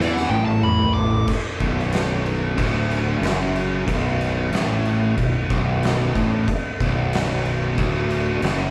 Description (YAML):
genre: stoner and doom metal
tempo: 92 BPM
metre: 4/4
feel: straight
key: B minor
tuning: A4 = 439 Hz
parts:
  - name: fuzz lead guitar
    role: melody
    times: 0.0-1.3 s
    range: D5 to D6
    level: -27 LUFS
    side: equal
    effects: distortion
  - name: fuzz guitar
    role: riff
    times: 0.0-8.7 s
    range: B1 to E3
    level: -25 LUFS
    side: equal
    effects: distortion
  - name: fuzz fingered electric bass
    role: bass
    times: 0.0-8.7 s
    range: B0 to E2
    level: -28 LUFS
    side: equal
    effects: overdrive
  - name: oversized low-tuned drum kit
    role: drums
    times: 0.0-8.6 s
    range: crash cymbal, kick drum, snare drum, toms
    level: -26 LUFS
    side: equal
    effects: none
room: moderate large studio reverb, RT60 0.8 s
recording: band playing live in one room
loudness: -21 LUFS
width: mono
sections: 0.0-1.3 A section; 1.3-8.7 B section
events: drum fill 0.0-1.3; lead electric guitar solo 0.0-1.3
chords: 0.0 N.C.; 1.3 Bm